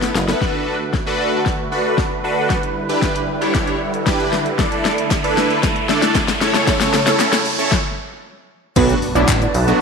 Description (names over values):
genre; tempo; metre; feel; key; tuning
dance-pop; 115 BPM; 4/4; straight; B minor; A4 = 440 Hz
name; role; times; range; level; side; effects
big bright polysynth; accompaniment; 0.0-9.8 s; F#3 to D5; -19 LUFS; equal; chorus, phaser, sidechain pumping
deep house drum kit; drums; 0.0-9.8 s; crash cymbal, handclaps, hi-hat, kick drum, shaker, snare drum; -19 LUFS; left 3 dB; none
chorused synth bass; bass; 0.2-0.3, 8.8-9.7 s; F#1 to B1; -18 LUFS; equal; sidechain pumping
filtered supersaw swell; sustained chords; 0.4-9.8 s; C#3 to A5; -24 LUFS; right 2 dB; sidechain pumping
riser and impact; sound effects; 2.8-9.8 s; none; -26 LUFS; right 1 dB; none
group handclap; percussion; 5.1-9.4 s; none; -32 LUFS; right 13 dB; none
glassy wavetable pluck; melody; 8.8-9.5 s; B3 to D5; -19 LUFS; right 5 dB; chorus, sidechain pumping, slapback echo
room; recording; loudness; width
wet echo chamber reverb, RT60 1.6 s; 1960s-style stereo, lossy compression artefacts; -15 LUFS; side -5 dB against mid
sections
0.4-8.8 A section; 8.8-9.8 B section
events
drum fill 0.0-0.4, 0.4-7.7; build-up 0.4-8.8; riser 2.8-8.8; stop 7.7-8.8; drop 8.8-9.8; impact 8.8-9.8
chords
0.4 Bm7; 2.5 Em7; 4.6 Dsus2; 6.4 A; 8.8 Bm7